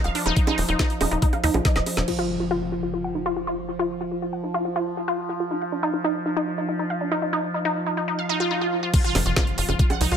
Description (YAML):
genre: psychedelic trance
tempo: 140 BPM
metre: 4/4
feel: straight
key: unclear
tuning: A4 = 441 Hz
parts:
  - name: overtone-sweeping drone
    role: sustained chords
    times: 0.0-10.2 s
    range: F3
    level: -29 LUFS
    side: right 1 dB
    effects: chorus, built-in reverb, sidechain pumping
  - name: wide unison pluck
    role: riff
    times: 0.0-10.2 s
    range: D4 to Gb5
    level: -25 LUFS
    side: equal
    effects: auto-pan, sidechain pumping, dub echo
  - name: tight sequencer bass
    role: bass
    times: 0.0-2.0, 9.2-10.2 s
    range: Eb1 to Eb2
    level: -24 LUFS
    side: equal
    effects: none
  - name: drum and bass drum kit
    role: drums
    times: 0.0-2.2, 8.9-10.2 s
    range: bongos, crash cymbal, hi-hat, snare drum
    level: -28 LUFS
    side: right 2 dB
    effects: overdrive
  - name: electronic kick drum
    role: drums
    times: 0.4-1.7, 8.9-9.9 s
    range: none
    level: -21 LUFS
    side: equal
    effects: overdrive
  - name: impact and swell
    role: sound effects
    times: 2.1-3.8, 8.3-10.2 s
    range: none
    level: -31 LUFS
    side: right 1 dB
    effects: none
room: light reverb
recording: none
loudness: -22 LUFS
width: side -8 dB against mid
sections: 0.0-2.1 A section; 2.1-8.9 B section; 8.9-10.2 C section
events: drum fill 1.6-2.1; impact 2.1-3.8, 8.9-10.2; swell 8.3-8.9; drop 8.9-10.2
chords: 0.0 Eb5; 2.1 N.C.; 8.9 F5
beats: | 0.36 0.79 1.22 1.65 | 2.08 2.51 2.94 3.37 | 3.79 4.22 4.65 5.08 | 5.51 5.94 6.37 6.79 | 7.22 7.65 8.08 8.51 | 8.94 9.37 9.79